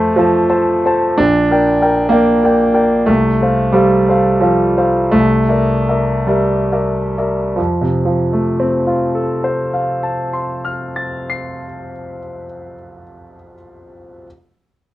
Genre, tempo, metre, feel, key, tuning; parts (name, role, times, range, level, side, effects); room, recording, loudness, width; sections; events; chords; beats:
classical, romantic character piece for solo piano; 44-66 BPM; 4/4; rubato; F major; A4 = 439 Hz
clear concert grand piano; solo; 0.0-14.3 s; Bb1 to C7; -13 LUFS; equal
moderate studio ambience, RT60 0.5 s; worn, warbling old tape, cassette tape, warbly pitch drift; -12 LUFS; side -15 dB against mid
0.0-7.6 A section; 7.6-12.1 B section
slowing down 0.0-7.6
0.0 F; 1.2 Gm/Bb; 3.1 F/C; 5.1 C9; 7.6 F
0.18 1.20 2.12 | 3.08 4.08 5.13 6.29 | 7.57 8.73 9.87 10.98